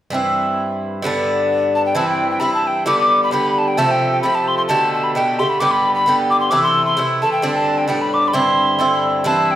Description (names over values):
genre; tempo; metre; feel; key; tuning
celtic folk; 132 BPM; 2/4; swing 56% on 8ths; C major; A4 = 440 Hz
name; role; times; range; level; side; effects
Irish bouzouki; accompaniment; 0.1-9.6 s; G2 to G4; -17 LUFS; equal; none
mellow hollow wooden whistle; melody; 1.8-9.6 s; G5 to D6; -17 LUFS; left 1 dB; none
room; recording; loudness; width
wet recital hall reverb, RT60 1.5 s; none; -14 LUFS; side -12 dB against mid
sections
0.1-2.0 A section; 2.0-9.2 B section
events
none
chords
0.1 C; 1.0 G; 2.0 C; 2.9 G; 3.8 Fadd9; 4.7 Gadd9; 5.6 G; 6.5 Am; 7.4 Gsus4; 7.9 Gadd9; 8.3 Cadd9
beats
| 0.12 0.58 | 1.04 1.49 | 1.95 2.41 | 2.87 3.32 | 3.78 4.24 | 4.69 5.15 | 5.61 6.06 | 6.52 6.97 | 7.43 7.88 | 8.34 8.79 | 9.25